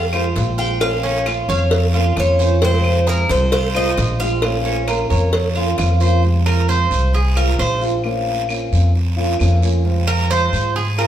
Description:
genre	latin, Cuban son and guajira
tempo	133 BPM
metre	4/4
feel	straight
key	F minor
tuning	A4 = 435 Hz
part	Cuban tres	melody	0.0-5.7 s	Bb4 to G5	-22 LUFS	left 1 dB	none
part	Cuban tres	arpeggios	0.0-11.1 s	C4 to Db5	-23 LUFS	right 3 dB	none
part	upright bass	bass	0.0-11.1 s	Bb1 to Ab2	-17 LUFS	equal	none
part	fingerpicked old ladder-braced acoustic guitar	accompaniment	0.1-11.1 s	C3 to F4	-23 LUFS	equal	none
part	claves	percussion	0.1-11.1 s	none	-31 LUFS	left 1 dB	none
part	cowbell	percussion	0.4-6.0 s	none	-24 LUFS	equal	none
part	guiro	percussion	0.4-11.1 s	none	-31 LUFS	right 4 dB	none
part	flamenco guitar	second line	4.7-6.2 s	Ab4 to F5	-25 LUFS	right 1 dB	none
room	wet stone room reverb, RT60 1.4 s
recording	band playing live in one room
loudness	-15 LUFS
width	side -10 dB against mid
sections	0.0-6.2 A section; 6.2-11.1 B section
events	Cuban tres solo 6.2-11.1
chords	0.0 Fm; 0.8 Bbm; 2.6 Fm; 4.4 Bbm; 6.2 Fm; 8.0 Bbm; 9.9 Fm

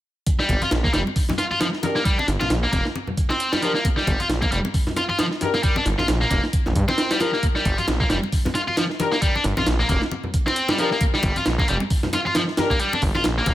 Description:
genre	breakbeat, breaks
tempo	134 BPM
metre	4/4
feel	swing 57% on 16ths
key	G minor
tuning	A4 = 440 Hz
part	breakbeat sampler-style drum kit	drums	0.3-13.5 s	hi-hat, kick drum, snare drum	-23 LUFS	equal	studio reverb
part	high-gain distorted guitar	riff	0.4-13.5 s	F3 to F4	-23 LUFS	equal	distortion, ping-pong delay
part	detuned saw bass	bass	0.5-13.5 s	F1 to G2	-24 LUFS	equal	none
part	congas	percussion	0.5-13.5 s	none	-30 LUFS	left 2 dB	none
part	mellow brass ensemble	stabs	1.8-12.7 s	D4 to Bb4	-27 LUFS	left 3 dB	ping-pong delay
room	little or no reverb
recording	none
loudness	-19 LUFS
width	side -14 dB against mid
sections	0.3-13.5 A section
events	none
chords	0.3 Gm

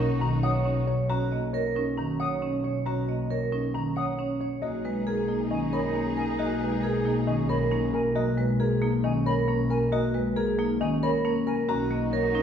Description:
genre	classical, minimalist pattern music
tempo	136 BPM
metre	4/4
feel	straight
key	B major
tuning	A4 = 440 Hz
part	dark grand piano	melody	0.0-12.4 s	A#4 to A#5	-34 LUFS	left 4 dB	none
part	mellow clarinet	second line	0.0-0.8, 4.6-7.9, 11.7-12.4 s	D#4	-38 LUFS	right 2 dB	none
part	marimba with medium hard mallets	accompaniment	0.0-12.4 s	D#3 to C#4	-29 LUFS	left 2 dB	none
part	rich studio string section	sustained chords	0.0-0.8, 4.6-7.9, 11.7-12.4 s	D#4 to G#4	-38 LUFS	left 2 dB	none
part	vibraphone with hard mallets	arpeggios	0.0-12.4 s	C#4 to D#5	-29 LUFS	right 5 dB	none
part	rich studio double bass section	bass	0.0-12.4 s	B1	-30 LUFS	equal	none
part	hollow concert flute	arpeggios	0.2-11.6 s	G#5 to D#6	-36 LUFS	left 4 dB	none
room	wet scoring stage reverb, RT60 1.7 s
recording	heard from further back in the room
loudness	-24 LUFS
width	side -8 dB against mid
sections	0.0-12.4 A section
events	none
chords	0.0 D#m/B; 4.6 B69; 11.7 D#m/B

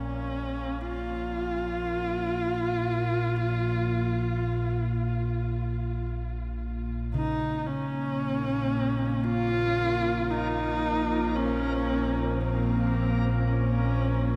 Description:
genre	ambient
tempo	free time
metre	none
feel	none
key	Bb minor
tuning	A4 = 440 Hz
part	warm horsehead fiddle	melody	0.0-14.4 s	C4 to F4	-32 LUFS	equal	delay
part	analog drone	drone	0.0-14.4 s	Bb1 to Bb2	-31 LUFS	equal	chorus
part	deep dark ambient pad	sustained chords	7.6-14.4 s	Bb3 to C5	-35 LUFS	equal	chorus, built-in reverb
part	gamelan-type bossed gongs	arpeggios	7.1-13.5 s	Db3	-40 LUFS	equal	delay
part	backwards swelling texture	texture	8.4-14.4 s	Bb3	-41 LUFS	equal	built-in reverb
room	wet cathedral reverb, RT60 5.4 s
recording	none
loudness	-28 LUFS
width	mono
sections	0.0-7.1 A section; 7.1-14.4 B section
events	none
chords	0.0 N.C.; 7.1 Bbm

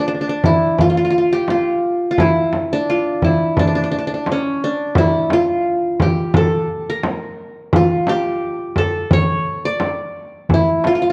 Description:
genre	Arabic maqam ensemble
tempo	86 BPM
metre	4/4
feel	straight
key	D maqam nahawand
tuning	A4 = 440 Hz
part	qanun	melody	0.0-11.1 s	C#4 to D5	-20 LUFS	equal	none
part	darbuka	percussion	0.3-11.0 s	none	-23 LUFS	equal	none
part	frame drum	percussion	0.4-11.0 s	none	-22 LUFS	equal	none
room	moderate recital hall reverb, RT60 1.8 s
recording	worn, warbling old tape, cassette tape, warbly pitch drift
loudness	-17 LUFS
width	mono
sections	0.0-11.1 A section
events	none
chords	none

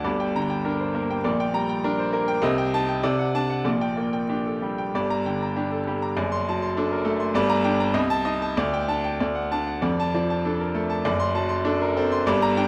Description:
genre	classical, virtuoso piano study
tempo	92-103 BPM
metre	2/4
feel	rubato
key	G minor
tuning	A4 = 440 Hz
part	clear baby grand piano	solo	0.0-12.7 s	F1 to C6	-24 LUFS	equal	none
room	wet recital hall reverb, RT60 1.5 s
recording	vinyl crackle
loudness	-24 LUFS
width	mono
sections	0.0-4.9 A section; 4.9-12.7 A section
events	none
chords	0.1 Gm; 1.3 Gm/Bb; 2.4 Am7b5/C; 3.0 D7/C; 3.7 Gm/Bb; 4.9 Gm; 6.2 D7/F#; 7.3 Gm; 7.9 Adim/C; 8.6 Dsus4; 9.2 D; 9.8 Dm/F; 11.1 D7/F#

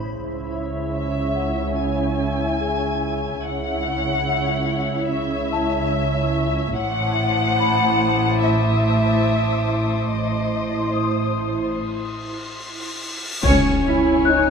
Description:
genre	cinematic, suspense film score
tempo	72 BPM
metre	4/4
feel	straight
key	C# minor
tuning	A4 = 440 Hz
part	glassy FM pad	sustained chords	0.0-14.5 s	C#4 to C6	-26 LUFS	left 1 dB	ensemble chorus, built-in reverb, tremolo
part	muted chamber cello section	bass	0.0-14.5 s	A2 to E4	-25 LUFS	right 4 dB	none
part	large celesta	texture	0.0-14.5 s	G#4 to F#6	-28 LUFS	left 8 dB	none
part	muted chamber double bass section	bass	0.1-14.5 s	A1 to C#2	-26 LUFS	right 2 dB	none
part	muted chamber violin section	melody	0.9-14.5 s	C5 to G#5	-24 LUFS	left 1 dB	none
part	muted studio violin section	texture	6.8-14.5 s	G#5 to D#6	-33 LUFS	left 5 dB	none
part	cymbal swell and impact	sound effects	12.2-14.5 s	none	-26 LUFS	left 1 dB	none
part	muted chamber violin section	second line	13.4-14.5 s	C#5	-24 LUFS	left 1 dB	none
part	muted chamber viola section	accompaniment	13.4-14.5 s	C#4	-22 LUFS	left 4 dB	none
part	taiko ensemble	drums	13.4-14.5 s	none	-25 LUFS	left 1 dB	none
room	moderate concert hall reverb, RT60 1.8 s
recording	none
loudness	-19 LUFS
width	side -6 dB against mid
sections	0.0-13.4 A section; 13.4-14.5 A section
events	break 11.8-13.4; cymbal swell 12.2-13.4; band accent 13.4-14.3; impact 13.4-14.5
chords	0.1 C#m; 6.8 Amadd9; 13.4 C#m

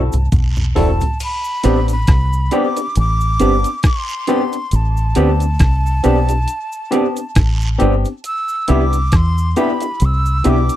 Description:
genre	lovers rock reggae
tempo	68 BPM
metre	4/4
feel	swing 57% on 16ths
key	A minor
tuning	A4 = 439 Hz
part	breathy hollow jazz flute	melody	0.0-10.8 s	A5 to E6	-22 LUFS	equal	tape echo
part	barky tine electric piano	accompaniment	0.0-10.6 s	B3 to A4	-18 LUFS	left 4 dB	slapback echo
part	deep dub fingered electric bass	bass	0.0-10.7 s	E1 to E2	-15 LUFS	equal	none
part	detuned 8-bit digital drum machine	drums	0.1-10.8 s	crash cymbal, hi-hat, kick drum, rim click, toms	-17 LUFS	equal	none
part	cabasa and guiro	percussion	0.1-10.8 s	none	-34 LUFS	right 4 dB	slapback echo
part	electric guitar through a small old amp	stabs	0.8-10.6 s	C4 to E5	-19 LUFS	right 8 dB	none
room	little or no reverb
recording	dry, close 1970s-style studio recording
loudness	-14 LUFS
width	side -13 dB against mid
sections	0.0-1.2 A section; 1.2-10.8 B section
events	drum fill 0.0-1.2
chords	0.0 D7 (rootless); 1.2 Am11; 8.2 Cmaj7

